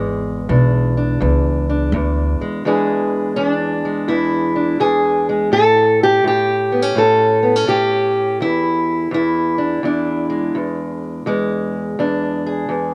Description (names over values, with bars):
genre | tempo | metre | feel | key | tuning
acoustic country blues, solo or duo | 84 BPM | 4/4 | swing 65% on 8ths | E mixolydian | A4 = 440 Hz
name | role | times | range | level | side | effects
fingerpicked steel-string acoustic guitar | melody | 0.0-12.9 s | E2 to A4 | -18 LUFS | equal | slapback echo
upright bass | bass | 0.0-2.4 s | G#1 to D2 | -19 LUFS | equal | none
room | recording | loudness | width
little or no reverb | recorded outdoors, with no room sound | -17 LUFS | mono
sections
0.0-2.7 A section; 2.7-12.9 A section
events
none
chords
0.0 E7; 5.5 A7; 8.4 E7